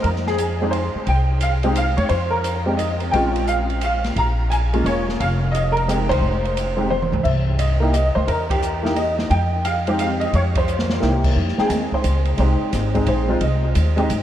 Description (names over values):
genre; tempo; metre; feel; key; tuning
jazz piano trio; 175 BPM; 3/4; swing 65% on 8ths; F minor; A4 = 440 Hz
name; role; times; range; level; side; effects
warm baby grand piano; melody; 0.0-14.1 s; Ab3 to Bb5; -20 LUFS; equal; ensemble chorus, tape echo
upright bass; bass; 0.0-14.2 s; E1 to G2; -21 LUFS; equal; none
open jazz drum kit; drums; 0.0-14.2 s; crash cymbal, hi-hat, kick drum, ride cymbal, snare drum, toms; -27 LUFS; right 1 dB; none
room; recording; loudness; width
moderate huge ambient reverb, RT60 4.9 s; dreamy mix soaked in reverb; -17 LUFS; side -11 dB against mid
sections
0.0-11.4 A section; 11.4-14.2 B section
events
band accent 6.0, 8.4, 10.5; drum fill 6.9-7.2, 10.7-11.0; grand piano solo 11.4-14.2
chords
0.0 Fm7; 3.1 Bbm7; 5.2 Fm7; 7.2 C7#9; 9.3 Fm7; 11.0 C7#9; 11.4 Fm7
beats
| 0.04 0.39 0.73 | 1.07 1.41 1.76 | 2.10 2.44 2.79 | 3.13 3.47 3.81 | 4.16 4.50 4.84 | 5.19 5.53 5.87 | 6.21 6.56 6.90 | 7.24 7.59 7.93 | 8.27 8.62 8.96 | 9.30 9.64 9.99 | 10.33 10.68 11.02 | 11.36 11.70 12.05 | 12.39 12.73 13.07 | 13.42 13.76 14.10